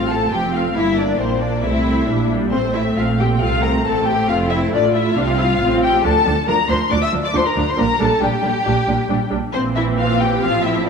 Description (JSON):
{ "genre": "quick classical-period movement for string orchestra", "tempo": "136 BPM", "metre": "4/4", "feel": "straight", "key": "F major", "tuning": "A4 = 439 Hz", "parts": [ { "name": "rich symphonic violin section", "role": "melody", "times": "0.0-10.9 s", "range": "C5 to E6", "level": "-21 LUFS", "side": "left 5 dB", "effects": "none" }, { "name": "clear symphonic violin section", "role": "second line", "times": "0.0-10.9 s", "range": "C4 to E5", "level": "-22 LUFS", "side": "left 2 dB", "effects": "none" }, { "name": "rich symphonic viola section", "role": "accompaniment", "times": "0.0-10.9 s", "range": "E3 to F4", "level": "-22 LUFS", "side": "right 1 dB", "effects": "none" }, { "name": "rich symphonic cello section", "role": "bass", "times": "0.0-10.9 s", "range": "D2 to C3", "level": "-24 LUFS", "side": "right 3 dB", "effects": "none" }, { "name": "rich symphonic double bass section", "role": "bass", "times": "0.0-10.9 s", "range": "F1 to D2", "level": "-23 LUFS", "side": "right 3 dB", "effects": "none" } ], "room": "wet scoring stage reverb, RT60 1.7 s", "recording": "minimal, uncompressed stereo recording", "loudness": "-15 LUFS", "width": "side -6 dB against mid", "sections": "0.0-10.9 A section", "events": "none", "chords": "0.0 F; 0.8 C7/G; 2.5 Gm11/A; 4.3 F; 6.0 Dm; 7.8 Gm/Bb; 9.5 C7/Bb" }